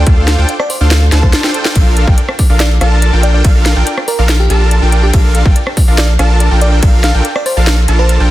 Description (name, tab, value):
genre	future bass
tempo	142 BPM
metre	4/4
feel	half-time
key	Bb major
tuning	A4 = 441 Hz
part	bell-like FM electric piano	melody	0.0-8.3 s	G4 to F5	-21 LUFS	right 1 dB	chorus, sidechain pumping, dub echo
part	airy dreamy lead	arpeggios	0.0-8.3 s	F5 to A5	-24 LUFS	equal	chorus, sidechain pumping
part	supersaw chords	riff	0.0-8.3 s	D4 to A5	-17 LUFS	equal	vintage 12-bit sampler grit, sidechain pumping
part	saturated sub bass	bass	0.0-8.3 s	Bb1 to D2	-10 LUFS	equal	sidechain pumping
part	wide unison pluck	arpeggios	0.1-8.2 s	A4 to C6	-27 LUFS	left 2 dB	none
part	electronic kick drum	drums	0.1-6.9 s	none	-9 LUFS	equal	studio reverb
part	trap drum kit	drums	0.1-8.2 s	hi-hat, ride cymbal, rim click, snare drum	-17 LUFS	equal	studio reverb
room	digital ambience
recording	dense, heavily limited modern master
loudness	-8 LUFS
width	side -15 dB against mid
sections	0.0-8.3 A section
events	drum fill 1.1-1.8; break 1.3-1.8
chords	0.0 Dm7; 1.8 Bbmaj7